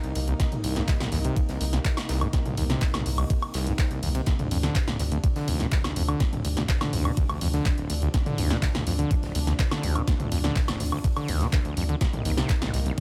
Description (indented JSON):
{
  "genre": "acid house",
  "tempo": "124 BPM",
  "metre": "4/4",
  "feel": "straight",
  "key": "D phrygian",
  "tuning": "A4 = 440 Hz",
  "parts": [
    { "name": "warm analog pad", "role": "sustained chords", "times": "0.0-13.0 s", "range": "C3 to Eb4", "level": "-37 LUFS", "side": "equal", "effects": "chorus, sidechain pumping" },
    { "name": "overdriven acid bass", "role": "riff", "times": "0.0-13.0 s", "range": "D1 to D3", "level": "-32 LUFS", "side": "equal", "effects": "tube saturation, cassette tape, sidechain pumping, tape echo" },
    { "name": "punchy analog drum machine", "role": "drums", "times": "0.0-13.0 s", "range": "handclaps, hi-hat, snare drum, toms, woodblock", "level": "-33 LUFS", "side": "equal", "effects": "none" },
    { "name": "saturated sub bass", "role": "bass", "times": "0.2-12.9 s", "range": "C2 to D2", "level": "-30 LUFS", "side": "equal", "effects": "tube saturation, sidechain pumping" },
    { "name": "big rock drum kit", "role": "drums", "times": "0.2-13.0 s", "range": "hi-hat, ride cymbal, snare drum", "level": "-46 LUFS", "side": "equal", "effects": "none" },
    { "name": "electronic kick drum", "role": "drums", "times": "0.4-13.0 s", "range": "none", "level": "-27 LUFS", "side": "equal", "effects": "none" }
  ],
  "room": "light reverb",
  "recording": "none",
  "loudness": "-26 LUFS",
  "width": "mono",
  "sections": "0.0-13.0 A section",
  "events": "none",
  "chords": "0.0 Cm7; 4.3 Dm7; 12.0 Cm7"
}